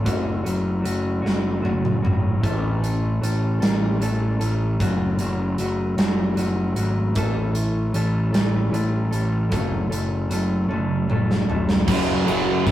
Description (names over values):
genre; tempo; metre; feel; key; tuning
quiet-loud alternative rock; 51 BPM (dotted quarters); 6/8; straight; unclear; A4 = 440 Hz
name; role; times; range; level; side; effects
mellow electric guitar; arpeggios; 0.0-11.9 s; F#2 to A4; -25 LUFS; left 2 dB; none
fuzz picked electric bass; bass; 0.0-12.7 s; F#1 to A1; -24 LUFS; equal; overdrive
big rock drum kit; drums; 0.1-12.7 s; crash cymbal, hi-hat, kick drum, ride cymbal, snare drum, toms; -24 LUFS; right 1 dB; none
string machine, violins; sustained chords; 11.9-12.7 s; A3 to G#4; -32 LUFS; right 2 dB; none
distorted electric guitar; riff; 11.9-12.7 s; F#2 to F#3; -20 LUFS; right 2 dB; distortion
sludgy distorted guitar; riff; 11.9-12.7 s; F#2 to F#3; -24 LUFS; left 2 dB; overdrive
room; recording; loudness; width
light reverb; rough rehearsal-room recording; -20 LUFS; side -13 dB against mid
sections
0.0-11.9 A section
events
drum fill 1.2-2.4, 10.7-11.9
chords
0.1 F#m; 2.4 A; 4.8 F#m; 7.2 A; 9.5 F#m; 11.9 F#madd9